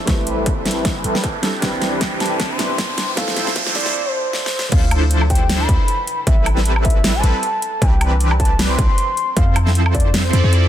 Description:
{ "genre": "future bass", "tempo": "155 BPM", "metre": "4/4", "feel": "swing 55% on 16ths, half-time", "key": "C major", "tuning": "A4 = 438 Hz", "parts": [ { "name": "felt-muted upright piano", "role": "accompaniment", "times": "0.0-4.7 s", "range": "F3 to B4", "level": "-28 LUFS", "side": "right 2 dB", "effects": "sidechain pumping, ping-pong delay" }, { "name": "ethereal airy pad", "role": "sustained chords", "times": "0.0-3.9 s", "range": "C3 to D6", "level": "-36 LUFS", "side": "right 2 dB", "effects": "none" }, { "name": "riser", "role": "sound effects", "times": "0.5-3.9 s", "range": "none", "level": "-26 LUFS", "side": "right 3 dB", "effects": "none" }, { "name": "soft octave-layered synth lead", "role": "melody", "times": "0.1-10.7 s", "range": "C5 to C6", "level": "-24 LUFS", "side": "left 1 dB", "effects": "chorus, sidechain pumping, dub echo" }, { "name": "soft supersaw", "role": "riff", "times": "0.1-10.7 s", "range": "E3 to D5", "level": "-23 LUFS", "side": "equal", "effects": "phaser, sidechain pumping, low-pass filter" }, { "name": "warm 808-style bass", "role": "bass", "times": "0.1-10.7 s", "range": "A1 to F2", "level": "-18 LUFS", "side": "equal", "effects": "sidechain pumping" }, { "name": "dubstep drum kit", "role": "drums", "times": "0.1-10.6 s", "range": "crash cymbal, hi-hat, snare drum, woodblock", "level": "-23 LUFS", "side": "equal", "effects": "studio ambience" }, { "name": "electronic kick drum", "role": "drums", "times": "0.1-10.0 s", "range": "none", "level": "-18 LUFS", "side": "equal", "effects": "distortion, studio ambience" } ], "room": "little or no reverb", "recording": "dense, heavily limited modern master, high-pass filter", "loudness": "-15 LUFS", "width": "side -11 dB against mid", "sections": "0.0-4.7 A section; 4.7-10.7 B section", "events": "build-up 0.0-4.7; drum fill 0.0-3.9, 4.3-4.7; filter sweep on supersaw synth 0.0-4.7; filter sweep on soft synth lead 0.0-4.7; filter sweep 0.0-4.7; riser 0.5-3.9; drop 4.7-10.7", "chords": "0.1 Am9; 1.4 Cmaj9; 3.2 Fmaj7; 4.7 Dm9; 6.3 Am9; 7.6 Cmaj9; 9.4 Fmaj7" }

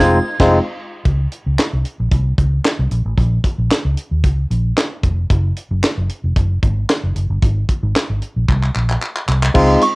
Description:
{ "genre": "early-eighties boogie funk", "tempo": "113 BPM", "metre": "4/4", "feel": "straight", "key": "Bb minor", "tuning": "A4 = 437 Hz", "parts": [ { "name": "delicate synth tine bell", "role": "melody", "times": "0.0-0.5, 9.8-10.0 s", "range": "Db6 to Ab6", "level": "-18 LUFS", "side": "right 3 dB", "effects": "chorus, phaser, cassette tape" }, { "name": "barky tine electric piano", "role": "accompaniment", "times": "0.0-0.6, 9.5-9.8 s", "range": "Ab3 to F4", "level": "-14 LUFS", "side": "left 1 dB", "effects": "cassette tape" }, { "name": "warm studio string section", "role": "sustained chords", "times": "0.0-1.0, 9.6-10.0 s", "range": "Db3 to F4", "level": "-33 LUFS", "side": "left 1 dB", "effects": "none" }, { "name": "vintage muted fingered electric bass", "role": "bass", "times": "0.0-9.8 s", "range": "F1 to Eb2", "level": "-16 LUFS", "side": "equal", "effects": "none" }, { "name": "tight funk drum kit", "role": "drums", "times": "0.0-9.9 s", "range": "crash cymbal, handclaps, hi-hat, kick drum, snare drum", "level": "-17 LUFS", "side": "equal", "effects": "none" } ], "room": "light reverb", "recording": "home recording on cassette", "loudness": "-15 LUFS", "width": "side -26 dB against mid", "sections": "0.0-1.1 A section; 1.1-9.6 B section", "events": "band accent 0.0-1.1; drum fill 8.5-9.6", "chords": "0.0 Fm7; 1.1 Bbmadd9 (rootless); 2.9 Bbm; 5.3 N.C.; 7.4 Abadd9" }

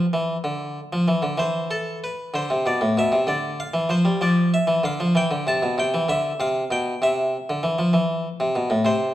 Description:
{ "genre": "classical, baroque-style suite movement for harpsichord", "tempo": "64 BPM (dotted quarters)", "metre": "12/8", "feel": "rubato", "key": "C major", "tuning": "A4 = 438 Hz", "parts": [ { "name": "harpsichord", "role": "solo", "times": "0.0-9.1 s", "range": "A2 to A5", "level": "-20 LUFS", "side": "equal", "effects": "none" } ], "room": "moderate recital hall reverb, RT60 1.4 s", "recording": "dark, warm production", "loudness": "-20 LUFS", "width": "side -13 dB against mid", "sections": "0.0-9.1 A section", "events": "none", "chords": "0.0 G (rootless); 1.4 C/E; 3.3 N.C.; 5.2 C" }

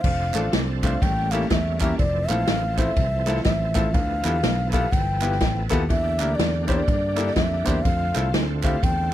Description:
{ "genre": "uptempo gospel", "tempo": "123 BPM", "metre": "4/4", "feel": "swing 62% on 8ths", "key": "F major", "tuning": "A4 = 439 Hz", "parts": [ { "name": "breathy round clay ocarina", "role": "melody", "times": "0.0-9.1 s", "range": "D5 to G5", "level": "-26 LUFS", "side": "left 1 dB", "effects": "none" }, { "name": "clear baby grand piano", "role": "accompaniment", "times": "0.0-8.7 s", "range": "A2 to C5", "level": "-28 LUFS", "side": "left 3 dB", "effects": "none" }, { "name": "bright tonewheel organ", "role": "sustained chords", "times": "0.0-9.1 s", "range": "D3 to A4", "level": "-32 LUFS", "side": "right 5 dB", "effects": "slow rotary speaker, overdrive, chorus vibrato" }, { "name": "fingered electric bass", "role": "bass", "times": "0.0-9.1 s", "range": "F1 to G2", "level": "-25 LUFS", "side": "equal", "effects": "none" }, { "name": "swinging big-band drum kit", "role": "drums", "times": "0.0-9.0 s", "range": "crash cymbal, kick drum, ride cymbal, snare drum", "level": "-24 LUFS", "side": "equal", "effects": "none" }, { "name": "group handclap", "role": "percussion", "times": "0.3-8.7 s", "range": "none", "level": "-32 LUFS", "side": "right 13 dB", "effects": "none" } ], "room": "little or no reverb", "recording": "none", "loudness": "-20 LUFS", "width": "side -12 dB against mid", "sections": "0.0-9.1 A section", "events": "none", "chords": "0.0 F6; 1.0 A7b9; 2.0 Fmaj7; 3.9 G13; 5.9 Em7b5; 7.8 Fmaj7" }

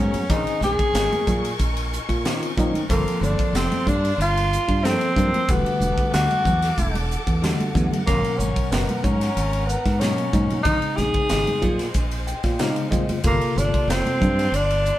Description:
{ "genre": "electric jazz fusion", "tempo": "93 BPM", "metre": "4/4", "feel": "straight", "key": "unclear", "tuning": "A4 = 439 Hz", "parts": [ { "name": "breathy tenor saxophone", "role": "melody", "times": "0.0-15.0 s", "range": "A#3 to G#4", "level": "-23 LUFS", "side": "equal", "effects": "none" }, { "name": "bell-like tine electric piano", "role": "accompaniment", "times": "0.0-14.3 s", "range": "B2 to G5", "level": "-26 LUFS", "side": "left 2 dB", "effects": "fast stereo tremolo" }, { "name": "warm studio string section", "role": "sustained chords", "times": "0.0-15.0 s", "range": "Bb3 to D6", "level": "-33 LUFS", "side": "equal", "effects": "none" }, { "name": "modern bright fingered electric bass", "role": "bass", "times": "0.0-14.9 s", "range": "E1 to A#2", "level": "-24 LUFS", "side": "equal", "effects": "none" }, { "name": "crisp fusion drum kit", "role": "drums", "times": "0.1-15.0 s", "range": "hi-hat, kick drum, ride cymbal, snare drum", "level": "-25 LUFS", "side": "equal", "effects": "none" }, { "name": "congas", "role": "percussion", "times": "0.1-14.4 s", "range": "none", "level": "-29 LUFS", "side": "right 2 dB", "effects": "none" } ], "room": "moderate studio reverb, RT60 0.8 s", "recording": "band playing live in one room", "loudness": "-19 LUFS", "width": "side -14 dB against mid", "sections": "0.0-15.0 A section", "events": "drum fill 7.3-8.1; tine electric piano fill 12.0-13.2", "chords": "0.3 A#m11; 2.9 Gm11; 5.5 Em11; 8.1 G#m11; 10.7 A#m11; 13.2 Gm11" }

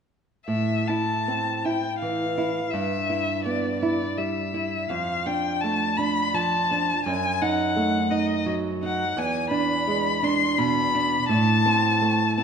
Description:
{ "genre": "romantic duo for violin and classical guitar", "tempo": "56 BPM (dotted quarters)", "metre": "6/8", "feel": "rubato", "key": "A minor", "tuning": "A4 = 440 Hz", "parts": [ { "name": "rich violin", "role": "melody", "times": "0.5-12.4 s", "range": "D5 to C6", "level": "-24 LUFS", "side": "left 4 dB", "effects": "none" }, { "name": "nylon-string guitar", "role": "accompaniment", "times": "0.5-12.4 s", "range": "E2 to E4", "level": "-24 LUFS", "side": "right 3 dB", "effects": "none" } ], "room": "wet recital hall reverb, RT60 1.6 s", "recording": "minimal, uncompressed stereo recording", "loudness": "-22 LUFS", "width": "side -6 dB against mid", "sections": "0.5-12.4 A section", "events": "none", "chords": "0.5 Am; 2.7 Em/G; 4.9 Dm/F; 7.1 F#m6; 9.2 E7; 11.3 Am" }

